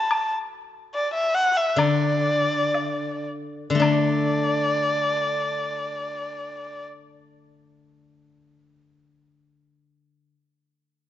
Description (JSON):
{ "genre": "chinese traditional, Chinese chamber ensemble", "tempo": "51-75 BPM", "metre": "2/4", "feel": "straight", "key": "unclear", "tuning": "A4 = 440 Hz", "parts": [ { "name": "dark erhu", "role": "melody", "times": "0.0-6.9 s", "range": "D5 to A5", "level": "-24 LUFS", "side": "equal", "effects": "none" }, { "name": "woodblock", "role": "percussion", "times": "0.1-4.4 s", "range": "none", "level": "-30 LUFS", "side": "left 3 dB", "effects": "none" }, { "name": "steel-string zither", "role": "accompaniment", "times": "1.8-10.3 s", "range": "D3 to D4", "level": "-24 LUFS", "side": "left 3 dB", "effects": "none" } ], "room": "moderate scoring stage reverb, RT60 1.8 s", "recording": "nothing above 7.8 kHz", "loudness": "-21 LUFS", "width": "side -11 dB against mid", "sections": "0.0-3.8 A section; 3.8-8.4 B section", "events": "slowing down 0.1-3.8", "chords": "none" }